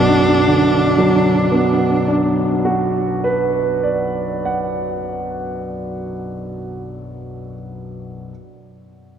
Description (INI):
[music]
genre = classical, romantic duo for cello and grand piano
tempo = 34 BPM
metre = 4/4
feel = rubato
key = B minor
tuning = A4 = 441 Hz
[part]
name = rich cello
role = melody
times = 0.0-2.1 s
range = D4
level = -19 LUFS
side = equal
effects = none
[part]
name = clear grand piano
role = accompaniment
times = 0.0-8.3 s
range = B1 to F#5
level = -17 LUFS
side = right 1 dB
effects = none
[sound]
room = wet cathedral reverb, RT60 4.4 s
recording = dark, warm production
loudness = -15 LUFS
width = side -8 dB against mid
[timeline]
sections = 0.0-6.1 A section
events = none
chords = 0.0 Bm